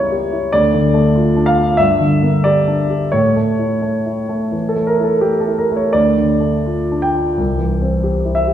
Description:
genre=classical, romantic character piece for solo piano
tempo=77-98 BPM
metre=4/4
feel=rubato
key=D minor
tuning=A4 = 441 Hz
part: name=warm concert grand piano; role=solo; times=0.0-8.5 s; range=C2 to G5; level=-13 LUFS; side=equal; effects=none
room=wet recital hall reverb, RT60 1.7 s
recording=heard from further back in the room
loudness=-13 LUFS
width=side -10 dB against mid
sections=0.0-8.5 A section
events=none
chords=0.0 C#dim7; 0.5 Dm; 1.8 Gm; 3.1 A; 6.0 Dm; 7.4 C

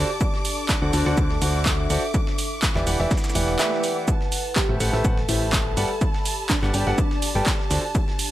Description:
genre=piano house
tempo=124 BPM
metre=4/4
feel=swing 54% on 16ths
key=G major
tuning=A4 = 438 Hz
part: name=bright symphonic violin section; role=sustained chords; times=0.0-8.3 s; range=A5 to D6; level=-33 LUFS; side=equal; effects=sidechain pumping
part: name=clear concert grand piano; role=riff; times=0.0-7.8 s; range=D3 to A5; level=-27 LUFS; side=equal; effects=sidechain pumping, tape echo
part: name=solid FM bass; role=bass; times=0.0-7.8 s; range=E1 to D2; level=-24 LUFS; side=equal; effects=sidechain pumping
part: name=warbly tape-like pad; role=texture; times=0.0-8.3 s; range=D4 to B5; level=-30 LUFS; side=equal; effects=chorus, built-in reverb, sidechain pumping
part: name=electronic kick drum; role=drums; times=0.2-8.1 s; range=none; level=-24 LUFS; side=equal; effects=overdrive
part: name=electronic shaker and snare drum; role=drums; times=0.2-8.3 s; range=none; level=-35 LUFS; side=right 2 dB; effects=high-pass filter on perc, high-pass filter on snare
part: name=punchy analog drum machine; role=drums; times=0.4-8.3 s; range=handclaps, hi-hat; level=-27 LUFS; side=right 1 dB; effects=overdrive
part: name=swell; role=sound effects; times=3.3-4.1 s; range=none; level=-34 LUFS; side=equal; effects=none
part: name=bell-like FM electric piano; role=melody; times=4.6-7.4 s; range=D4 to A4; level=-31 LUFS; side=equal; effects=chorus, tape echo
room=light reverb, digital ambience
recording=none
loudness=-20 LUFS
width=side -14 dB against mid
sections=0.0-8.3 A section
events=swell 3.3-4.1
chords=0.0 D7; 2.1 Em7; 4.1 Am9; 5.8 Gmaj9; 7.7 D7

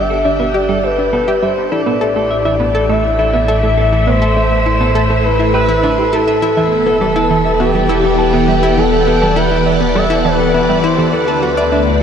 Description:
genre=ambient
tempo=102 BPM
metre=4/4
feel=straight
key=unclear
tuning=A4 = 435 Hz
part: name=expressive synth lead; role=melody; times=0.0-12.0 s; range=G4 to E5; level=-16 LUFS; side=equal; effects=chorus, ping-pong delay
part: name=phased string machine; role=sustained chords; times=0.0-12.0 s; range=A2 to F#5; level=-16 LUFS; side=equal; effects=ensemble chorus, phaser
part: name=analog pluck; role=riff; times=0.0-11.8 s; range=E3 to E5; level=-19 LUFS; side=equal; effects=chorus, cassette tape, ping-pong delay
part: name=round analog bass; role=bass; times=0.0-12.0 s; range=E1 to D2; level=-20 LUFS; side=equal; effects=none
part: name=semi-hollow electric guitar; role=arpeggios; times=0.1-11.8 s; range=G4 to A5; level=-22 LUFS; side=right 2 dB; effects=auto-pan, ping-pong delay
room=wet shimmer reverb, RT60 7.0 s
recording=none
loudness=-11 LUFS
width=side -8 dB against mid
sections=0.0-12.0 A section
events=none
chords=0.0 G; 1.7 Asus2; 6.4 Em7; 11.1 D

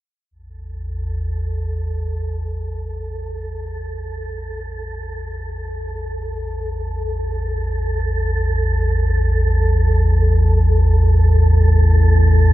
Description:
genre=dark ambient drone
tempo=free time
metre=none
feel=none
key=unclear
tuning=A4 = 440 Hz
part: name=deep rumbling drone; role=drone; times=0.5-12.5 s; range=A1 to E2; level=-17 LUFS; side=equal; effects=built-in reverb, lush chorus
part: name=wind-like tuned noise texture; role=texture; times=1.0-12.5 s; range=A4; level=-26 LUFS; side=right 1 dB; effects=built-in reverb
room=wet cathedral reverb, RT60 5.4 s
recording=dark, warm production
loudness=-15 LUFS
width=side -15 dB against mid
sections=0.3-12.5 A section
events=fade-in on synth texture 0.3-12.5; filter sweep on synth drone 0.3-12.5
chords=0.3 A5

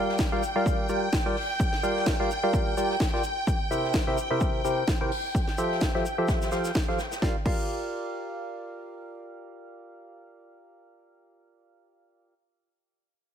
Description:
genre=piano house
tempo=128 BPM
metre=4/4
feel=swing 56% on 16ths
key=G dorian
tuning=A4 = 438 Hz
part: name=string machine, violins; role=sustained chords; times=0.0-7.2 s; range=G5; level=-32 LUFS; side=equal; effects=ensemble chorus, sidechain pumping
part: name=percussive organ stab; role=riff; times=0.0-12.3 s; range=C3 to G5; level=-29 LUFS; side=equal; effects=chorus, sidechain pumping, tape echo
part: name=unplugged drum kit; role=drums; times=0.1-7.2 s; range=hi-hat, shaker, snare drum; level=-39 LUFS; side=left 2 dB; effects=sidechain pumping on hats, high-pass filter on hats, high-pass filter on snare, sidechain pumping on perc, high-pass filter on perc, high-pass filter on room
part: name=electronic kick drum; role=drums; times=0.2-7.6 s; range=none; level=-28 LUFS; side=equal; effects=overdrive
part: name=house drum kit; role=drums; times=0.2-7.6 s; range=crash cymbal, snare drum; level=-34 LUFS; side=equal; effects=overdrive
room=light reverb, studio reverb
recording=none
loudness=-24 LUFS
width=side -8 dB against mid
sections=0.0-7.2 A section; 7.2-11.0 B section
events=filter sweep on synth stab 0.0-7.2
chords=0.0 Gm7; 3.2 C7; 5.3 Fmaj9; 7.2 Gm7

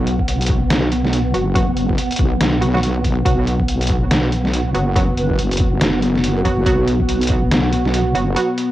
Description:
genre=deep dubstep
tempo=141 BPM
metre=4/4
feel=swing 60% on 16ths, half-time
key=unclear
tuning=A4 = 440 Hz
part: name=wobble bass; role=bass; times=0.0-8.4 s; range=F#1 to B1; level=-19 LUFS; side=equal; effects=chorus, tube saturation
part: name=wind-like tuned noise texture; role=texture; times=0.0-8.7 s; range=B3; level=-25 LUFS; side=right 2 dB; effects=built-in reverb, cassette tape
part: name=trip hop sampler-style drum kit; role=drums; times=0.1-8.7 s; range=hi-hat, snare drum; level=-21 LUFS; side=equal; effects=overdrive, small room ambience, cassette tape
part: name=electronic kick drum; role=drums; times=0.2-7.4 s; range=none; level=-20 LUFS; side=equal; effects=overdrive, small room ambience, cassette tape
part: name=filtered dub chord stab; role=stabs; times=1.3-8.5 s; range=F#3 to F#4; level=-24 LUFS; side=right 1 dB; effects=chorus, cassette tape, dub echo
part: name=deep dark ambient pad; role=sustained chords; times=4.8-8.7 s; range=B3 to F#5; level=-22 LUFS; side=equal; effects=chorus, built-in reverb, cassette tape
part: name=breathy mellow long shakuhachi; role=melody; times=5.2-6.9 s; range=F#4 to B4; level=-25 LUFS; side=right 2 dB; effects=cassette tape, dub echo
room=light reverb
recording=home recording on cassette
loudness=-15 LUFS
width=side -14 dB against mid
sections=0.0-8.7 A section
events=none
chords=0.0 B5

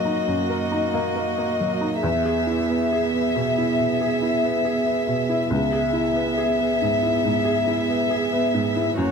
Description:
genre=neoclassical piano and strings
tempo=69 BPM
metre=4/4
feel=rubato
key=unclear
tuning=A4 = 440 Hz
part: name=warm chamber violin section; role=melody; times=0.0-9.1 s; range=C#5 to E5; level=-23 LUFS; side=left 5 dB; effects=none
part: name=dark cello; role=second line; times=0.0-9.1 s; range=A#3 to B3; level=-26 LUFS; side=right 8 dB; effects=none
part: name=felt-muted upright piano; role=accompaniment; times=0.0-9.1 s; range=C#2 to A#4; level=-25 LUFS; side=equal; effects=none
part: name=warm viola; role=accompaniment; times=0.0-9.1 s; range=F#4 to G#4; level=-30 LUFS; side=right 4 dB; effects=none
room=light reverb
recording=close, detailed microphones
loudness=-20 LUFS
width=side -6 dB against mid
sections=0.0-9.1 A section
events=none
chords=0.0 D#m/F#; 2.0 E; 5.5 C#m7

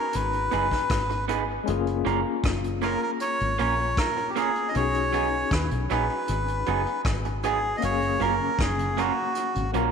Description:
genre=lovers rock reggae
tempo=78 BPM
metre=4/4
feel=straight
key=F# major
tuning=A4 = 440 Hz
part: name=melodica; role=melody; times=0.0-9.7 s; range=F#4 to D#5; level=-27 LUFS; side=right 1 dB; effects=tape echo
part: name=barky tine electric piano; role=accompaniment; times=0.0-9.9 s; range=G#3 to E#5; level=-31 LUFS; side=left 10 dB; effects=overdrive, fast tremolo, tape echo
part: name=deep dub fingered electric bass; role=bass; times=0.1-9.9 s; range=F#1 to D#2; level=-29 LUFS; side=left 1 dB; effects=none
part: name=vintage brush drum kit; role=drums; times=0.1-9.9 s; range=hi-hat, kick drum, rim click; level=-31 LUFS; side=left 1 dB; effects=tape echo
part: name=electric guitar through a small old amp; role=stabs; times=0.5-9.9 s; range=F#3 to B4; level=-29 LUFS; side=right 8 dB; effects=none
part: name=mellow tonewheel organ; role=accompaniment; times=8.0-9.8 s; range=F#2 to E#4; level=-36 LUFS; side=right 7 dB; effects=slow rotary speaker, tape echo
room=wet echo chamber reverb, RT60 2.6 s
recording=1960s-style stereo with parts hard left and right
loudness=-23 LUFS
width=side -6 dB against mid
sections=0.0-9.9 A section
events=none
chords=0.0 B6; 1.7 F#maj7; 4.7 B6; 7.8 F#maj7

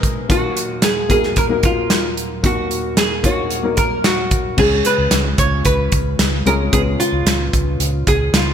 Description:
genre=piano-driven pop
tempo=112 BPM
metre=4/4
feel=straight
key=Db mixolydian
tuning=A4 = 440 Hz
part: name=dark upright piano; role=accompaniment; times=0.0-8.5 s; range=Ab1 to Db5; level=-23 LUFS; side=left 5 dB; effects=none
part: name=mellow tonewheel organ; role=sustained chords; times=0.0-8.5 s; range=Eb2 to Bb4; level=-29 LUFS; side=right 2 dB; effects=slow rotary speaker
part: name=modern studio drum kit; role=drums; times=0.0-8.5 s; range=crash cymbal, hi-hat, kick drum, snare drum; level=-18 LUFS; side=right 1 dB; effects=gated reverb
part: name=archtop guitar, miked and amplified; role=melody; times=0.3-8.5 s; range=F4 to Db5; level=-19 LUFS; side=right 1 dB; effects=lush chorus
part: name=vintage muted fingered electric bass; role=bass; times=4.6-8.5 s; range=Db2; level=-20 LUFS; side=equal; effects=none
room=moderate lush hall reverb, RT60 1.9 s, small room ambience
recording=bright 1980s-style digital production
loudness=-14 LUFS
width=side -8 dB against mid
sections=0.0-4.6 A section; 4.6-8.5 B section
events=none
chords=0.3 Ebm; 4.6 Db

